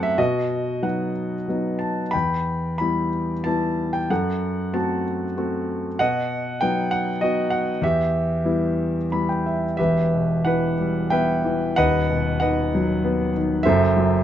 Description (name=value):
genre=classical, lyrical solo piano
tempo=88-100 BPM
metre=3/4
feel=rubato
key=E harmonic minor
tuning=A4 = 440 Hz
part: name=warm concert grand piano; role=solo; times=0.0-14.2 s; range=D#1 to B5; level=-20 LUFS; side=equal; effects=none
room=light reverb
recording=nothing above 8.0 kHz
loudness=-20 LUFS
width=side -10 dB against mid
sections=0.0-9.8 A section; 9.8-14.2 A section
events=grand piano fill 8.8-9.8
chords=0.2 B; 2.1 Em; 4.1 F#dim; 6.0 B; 7.8 Em; 11.8 B/D#; 13.6 F#dim